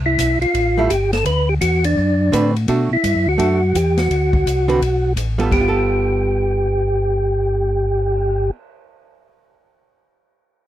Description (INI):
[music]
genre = soul jazz organ trio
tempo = 169 BPM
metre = 4/4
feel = swing 64% on 8ths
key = G mixolydian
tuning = A4 = 441 Hz
[part]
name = mellow tonewheel organ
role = bass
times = 0.0-8.5 s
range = G1 to B2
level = -19 LUFS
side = equal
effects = chorus vibrato, slow rotary speaker
[part]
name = percussive tonewheel organ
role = melody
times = 0.1-8.5 s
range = D4 to B4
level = -18 LUFS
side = equal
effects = chorus vibrato, fast rotary speaker
[part]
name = open jazz drum kit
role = drums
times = 0.2-8.3 s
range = crash cymbal, cymbal swell, hi-hat, kick drum, ride cymbal, snare drum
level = -26 LUFS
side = left 1 dB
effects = none
[part]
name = archtop guitar, miked and amplified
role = accompaniment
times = 0.8-8.7 s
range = D3 to B4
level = -22 LUFS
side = right 4 dB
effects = none
[sound]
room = little or no reverb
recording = dry, close 1970s-style studio recording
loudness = -15 LUFS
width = side -12 dB against mid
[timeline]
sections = 0.0-5.5 A section; 5.5-8.4 B section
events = none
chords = 0.0 C6; 1.3 D13; 2.7 Bm7; 4.1 D6; 5.5 G9